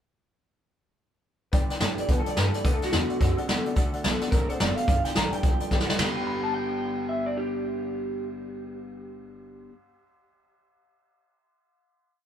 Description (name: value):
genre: rockabilly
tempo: 216 BPM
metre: 4/4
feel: swing 62% on 8ths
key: G major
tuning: A4 = 440 Hz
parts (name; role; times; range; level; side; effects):
- honky-tonk upright piano; accompaniment; 1.5-9.7 s; A4 to G5; -37 LUFS; left 3 dB; none
- picked steel-string acoustic guitar; accompaniment; 1.5-9.7 s; G2 to G4; -37 LUFS; left 2 dB; none
- electric guitar through a small old amp; riff; 1.5-9.7 s; G2 to B4; -33 LUFS; left 1 dB; spring reverb
- upright bass; bass; 1.5-9.7 s; F#1 to B2; -32 LUFS; equal; none
- vintage brush drum kit; drums; 1.5-6.1 s; hi-hat, kick drum, ride cymbal, snare drum, toms; -25 LUFS; equal; none
- electric guitar through a small old amp; melody; 2.0-9.7 s; F#4 to B5; -32 LUFS; right 1 dB; tape echo
room: light reverb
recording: band playing live in one room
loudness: -24 LUFS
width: side -9 dB against mid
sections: 1.5-6.0 A section; 6.0-8.2 final chord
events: drum fill 5.7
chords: 1.5 G; 2.6 D7; 4.9 G